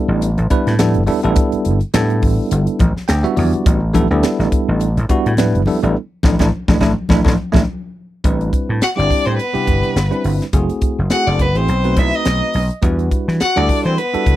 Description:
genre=electric jazz fusion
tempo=105 BPM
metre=4/4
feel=swing 56% on 16ths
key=A dorian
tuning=A4 = 440 Hz
part: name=bell-like tine electric piano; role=accompaniment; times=0.0-14.4 s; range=C3 to G5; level=-19 LUFS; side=right 1 dB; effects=medium stereo tremolo
part: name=vintage slap bass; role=bass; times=0.1-14.4 s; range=F#1 to E3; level=-17 LUFS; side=equal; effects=none
part: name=crisp fusion drum kit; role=drums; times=0.2-14.4 s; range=hi-hat, kick drum, snare drum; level=-18 LUFS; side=equal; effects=none
part: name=congas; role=percussion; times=0.2-7.7 s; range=none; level=-21 LUFS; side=left 3 dB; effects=none
part: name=clear violin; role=melody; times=8.8-14.4 s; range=B4 to F#5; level=-19 LUFS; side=equal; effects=none
part: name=clear trombone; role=second line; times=8.8-14.4 s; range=B3 to F#4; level=-24 LUFS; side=left 6 dB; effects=none
room=little or no reverb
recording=dry, close 1970s-style studio recording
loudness=-14 LUFS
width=side -14 dB against mid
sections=0.0-8.2 A section; 8.2-14.4 B section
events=tine electric piano fill 2.8-3.7, 7.1-8.2; band accent 6.0-8.2; drum fill 7.7-8.2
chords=0.0 A9sus4; 8.2 Am11; 10.5 F#m7b5; 11.7 B7b9; 12.8 Em9

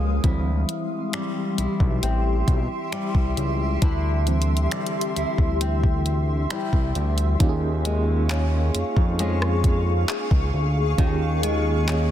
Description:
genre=contemporary R&B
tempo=67 BPM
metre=4/4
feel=straight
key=unclear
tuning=A4 = 440 Hz
part: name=FM electric piano with tremolo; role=accompaniment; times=0.0-12.1 s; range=Eb3 to Bb4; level=-30 LUFS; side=right 4 dB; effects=none
part: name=granular cloud pad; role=sustained chords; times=0.0-12.1 s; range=Ab3 to Eb6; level=-29 LUFS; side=equal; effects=built-in reverb
part: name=flamenco guitar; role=arpeggios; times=0.0-12.1 s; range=D3 to F4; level=-30 LUFS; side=left 4 dB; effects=ping-pong delay
part: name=fat analog bass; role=bass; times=0.0-12.1 s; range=A1 to F2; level=-23 LUFS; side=equal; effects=none
part: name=smooth R&B drum kit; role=drums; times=0.2-12.1 s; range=finger snaps, handclaps, hi-hat, kick drum, rim click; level=-23 LUFS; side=equal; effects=soft clipping on snare
part: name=synth chime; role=texture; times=8.3-12.1 s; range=Eb5 to F5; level=-38 LUFS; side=left 5 dB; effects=none
room=little or no reverb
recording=dense, heavily limited modern master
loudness=-20 LUFS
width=side -11 dB against mid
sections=0.0-7.4 A section; 7.4-12.1 B section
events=none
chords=0.2 D9sus4; 7.4 Eb9sus4

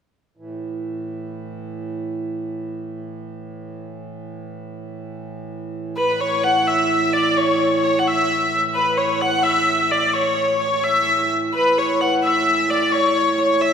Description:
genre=medieval dance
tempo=86 BPM (dotted quarters)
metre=6/8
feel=straight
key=A major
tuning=A4 = 440 Hz
part: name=pedal harmonium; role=drone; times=0.4-13.7 s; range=A2 to E3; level=-25 LUFS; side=right 3 dB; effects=none
part: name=warm hurdy-gurdy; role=melody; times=6.0-13.7 s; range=B4 to F#5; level=-17 LUFS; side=left 1 dB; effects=none
room=wet concert hall reverb, RT60 2.1 s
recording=recorded in a church or concert hall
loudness=-17 LUFS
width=side -7 dB against mid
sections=0.4-5.9 A section; 5.9-13.7 B section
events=none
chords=none

